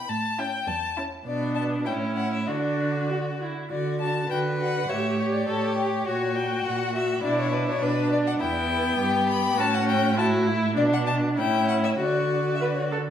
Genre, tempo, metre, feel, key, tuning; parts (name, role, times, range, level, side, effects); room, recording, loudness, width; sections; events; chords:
quick classical-period movement for string quartet; 96-104 BPM; 2/4; straight; D major; A4 = 441 Hz
clear violin; melody; 0.0-12.9 s; B4 to B5; -28 LUFS; left 5 dB
rich violin; second line; 0.0-12.9 s; D4 to C#5; -28 LUFS; left 2 dB
rich viola; accompaniment; 0.0-13.0 s; B3 to B4; -28 LUFS; equal
dark cello; bass; 0.1-13.0 s; E2 to D3; -28 LUFS; right 4 dB
wet stone room reverb, RT60 1.2 s; -22 LUFS; side -9 dB against mid
0.0-3.7 A section; 3.7-13.1 A section
0.1 A; 1.3 Bm; 1.9 A; 2.5 D; 4.9 A7; 6.1 F#/A#; 7.2 Bm; 8.4 Em; 9.6 A; 10.8 Bm; 11.4 A7; 12.0 D